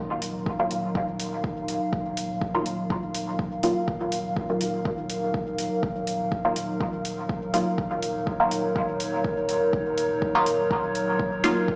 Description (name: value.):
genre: dub techno.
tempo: 123 BPM.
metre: 4/4.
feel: swing 54% on 16ths.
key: Eb minor.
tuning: A4 = 440 Hz.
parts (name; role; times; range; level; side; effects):
warbly tape-like pad; sustained chords; 0.0-11.8 s; Gb3 to F5; -30 LUFS; equal; chorus, built-in reverb, sidechain pumping.
pure sine sub bass; bass; 0.0-11.8 s; Eb1; -42 LUFS; equal; sidechain pumping.
electronic hi-hat; drums; 0.2-11.5 s; none; -37 LUFS; equal; none.
electronic kick drum; drums; 0.5-11.8 s; none; -33 LUFS; equal; overdrive.
filtered dub chord stab; stabs; 0.6-11.8 s; Gb3 to F4; -30 LUFS; equal; phaser, sidechain pumping, dub echo.
room: light reverb.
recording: played on a big sound system in a bare room, stone room reverb, small speaker sound.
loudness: -27 LUFS.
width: mono.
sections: 0.0-11.8 A section.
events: none.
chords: 0.0 Ebmadd9.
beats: 0.46 0.95 1.44 | 1.93 2.42 2.90 3.39 | 3.88 4.37 4.85 5.34 | 5.83 6.32 6.80 7.29 | 7.78 8.27 8.76 9.24 | 9.73 10.22 10.71 11.20 | 11.68.